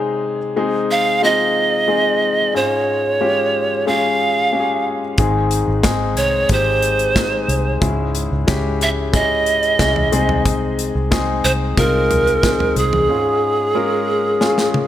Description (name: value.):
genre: piano-driven pop.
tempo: 91 BPM.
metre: 4/4.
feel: straight.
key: Ab major.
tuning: A4 = 440 Hz.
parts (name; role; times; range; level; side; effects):
clear grand piano; accompaniment; 0.0-14.9 s; Ab2 to Bb4; -20 LUFS; left 4 dB; none.
breathy bright pan flute; melody; 0.9-14.9 s; Ab4 to F5; -17 LUFS; right 3 dB; none.
vintage muted fingered electric bass; bass; 5.2-13.1 s; Ab1 to Db2; -21 LUFS; equal; none.
modern studio drum kit; drums; 5.2-14.9 s; hi-hat, kick drum, snare drum, toms; -20 LUFS; equal; none.
room: light reverb, studio reverb.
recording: none.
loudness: -15 LUFS.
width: side -12 dB against mid.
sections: 0.0-14.9 A section.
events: drum fill 14.4-14.9.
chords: 0.0 Ab/C; 2.5 Db; 5.2 Ab; 7.8 Dbm; 10.1 Ab/C; 13.1 Db.